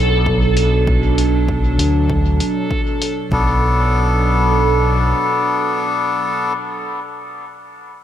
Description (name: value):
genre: ambient dub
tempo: 98 BPM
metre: 4/4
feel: swing 60% on 16ths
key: B minor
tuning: A4 = 438 Hz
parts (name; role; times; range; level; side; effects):
- warbly tape-like pad; sustained chords; 0.0-6.5 s; B2 to A4; -21 LUFS; right 2 dB; chorus, built-in reverb, phaser
- overdriven fingered electric bass; bass; 0.0-5.1 s; B1 to D2; -16 LUFS; equal; none
- backwards swelling texture; texture; 0.0-3.3 s; A4; -24 LUFS; right 1 dB; built-in reverb
- electronic kick drum; drums; 0.3-3.5 s; none; -22 LUFS; equal; none
- electronic hi-hat; drums; 0.6-3.2 s; none; -26 LUFS; left 3 dB; dub echo
- melodica; stabs; 3.3-6.5 s; B3 to A4; -19 LUFS; left 3 dB; dub echo
room: light reverb, digital ambience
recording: none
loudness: -14 LUFS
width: side -10 dB against mid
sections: 0.0-3.3 A section; 3.3-5.8 B section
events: none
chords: 0.0 Bm7